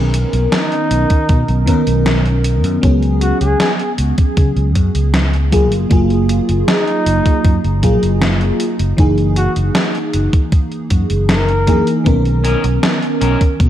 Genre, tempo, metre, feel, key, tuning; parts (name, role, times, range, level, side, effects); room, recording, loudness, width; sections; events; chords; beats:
vaporwave; 78 BPM; 4/4; straight; F# major; A4 = 437 Hz
FM electric piano with soft pad layer; accompaniment; 0.0-13.7 s; D#3 to A#4; -17 LUFS; equal; analog chorus, analog delay
fingered electric bass; bass; 0.0-13.7 s; F#1 to C#3; -15 LUFS; equal
gated 80s digital drum machine; drums; 0.1-13.7 s; hi-hat, snare drum; -19 LUFS; equal; gated reverb, gated reverb snare, studio reverb
mellow flugelhorn; melody; 0.5-12.1 s; D#4 to A#4; -22 LUFS; equal; tape echo
electronic kick drum; drums; 1.1-13.7 s; -13 LUFS; equal; studio reverb
electric guitar at the edge of break-up; riff; 12.4-13.4 s; C#4 to A#4; -25 LUFS; left 2 dB; wide subtle chorus, analog delay
light reverb; dark, warm production; -12 LUFS; side -11 dB against mid
0.0-13.7 A section
0.0 Bmaj9; 2.8 C#7sus4; 5.5 F#maj9; 8.6 F#13; 12.1 Bmaj9
0.52 1.29 2.06 | 2.83 3.60 4.37 5.14 | 5.91 6.68 7.45 8.21 | 8.98 9.75 10.52 11.29 | 12.06 12.83 13.60